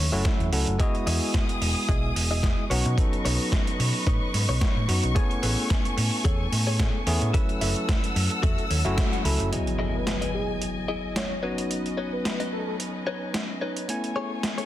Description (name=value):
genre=nu-disco, nu disco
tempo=110 BPM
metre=4/4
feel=swing 55% on 16ths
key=unclear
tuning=A4 = 439 Hz
part: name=bell-like tine electric piano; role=accompaniment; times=0.0-14.7 s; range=F#3 to G#5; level=-30 LUFS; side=equal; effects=sidechain pumping, low-pass filter, digital delay
part: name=direct-recorded clean electric guitar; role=riff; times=0.0-14.7 s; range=D#4 to B5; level=-34 LUFS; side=left 2 dB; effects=lush chorus, low-pass filter, digital delay
part: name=hollow-body short-scale fingered electric bass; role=bass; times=0.0-9.5 s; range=E1 to B2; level=-26 LUFS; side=equal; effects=tube saturation
part: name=dusty soul sampler-style drum kit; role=drums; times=0.2-14.7 s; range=hi-hat, snare drum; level=-30 LUFS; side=right 1 dB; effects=overdrive
part: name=electronic kick drum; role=drums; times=0.2-9.1 s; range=none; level=-25 LUFS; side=equal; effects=overdrive
part: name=warm symphonic violin section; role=sustained chords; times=0.8-14.7 s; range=A3 to E6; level=-34 LUFS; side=left 1 dB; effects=sidechain pumping
part: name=impact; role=sound effects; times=9.5-11.7 s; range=none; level=-34 LUFS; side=equal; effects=none
part: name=wide unison lead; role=melody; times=9.9-12.8 s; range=G#4 to C#5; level=-34 LUFS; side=equal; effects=ping-pong delay
room=light reverb, digital ambience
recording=dense, heavily limited modern master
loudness=-23 LUFS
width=side -13 dB against mid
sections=0.0-9.5 A section; 9.5-14.7 B section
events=clean electric guitar fill 0.0-0.8, 8.4-9.5; band accent 9.0; impact 9.5-11.7; filter sweep on clean electric guitar 9.5-14.7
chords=0.0 F#m7; 0.8 Emaj7; 2.7 Badd9; 5.2 Amaj7; 7.3 F#m7; 9.5 Emaj7; 11.4 Badd9; 13.9 Amaj7